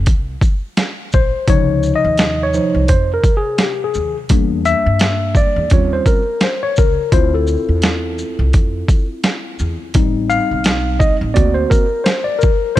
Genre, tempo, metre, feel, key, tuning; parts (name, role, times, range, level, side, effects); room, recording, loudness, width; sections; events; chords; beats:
hip hop, jazz-hop; 85 BPM; 4/4; swing 58% on 16ths; A4 = 441 Hz
upright bass; bass; 0.0-12.8 s; A1 to G2; -19 LUFS; equal
boom bap sampler-style drum kit; drums; 0.1-12.8 s; hi-hat, kick drum, shaker, snare drum; -15 LUFS; equal; overdrive
tine electric piano; accompaniment; 1.1-12.8 s; C3 to F5; -17 LUFS; moving between left 7 dB and right 3 dB; auto-pan
light reverb; -13 LUFS; side -14 dB against mid
0.0-12.8 A section
tine electric piano solo 0.0-12.8
0.0 N.C.; 1.5 Dbmaj9; 4.3 Em7b5; 5.7 Eb13; 7.1 Dm7; 10.0 Am7b5; 11.4 D7b13
0.07 0.78 | 1.48 2.19 2.89 3.60 | 4.30 5.01 5.72 6.42 | 7.13 7.83 8.54 9.25 | 9.95 10.66 11.36 12.07 | 12.78